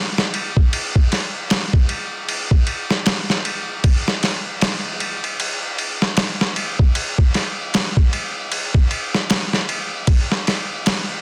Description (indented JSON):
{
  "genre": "trip hop",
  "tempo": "77 BPM",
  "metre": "4/4",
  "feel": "swing 59% on 16ths",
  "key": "none",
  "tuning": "none",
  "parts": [
    { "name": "boom bap sampler-style drum kit", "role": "drums", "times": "0.2-11.1 s", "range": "kick drum, ride cymbal, snare drum", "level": "-20 LUFS", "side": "equal", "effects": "small room ambience" }
  ],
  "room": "light reverb",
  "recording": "dense, heavily limited modern master",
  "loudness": "-20 LUFS",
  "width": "mono",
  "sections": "0.0-11.2 A section",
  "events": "none",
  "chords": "none"
}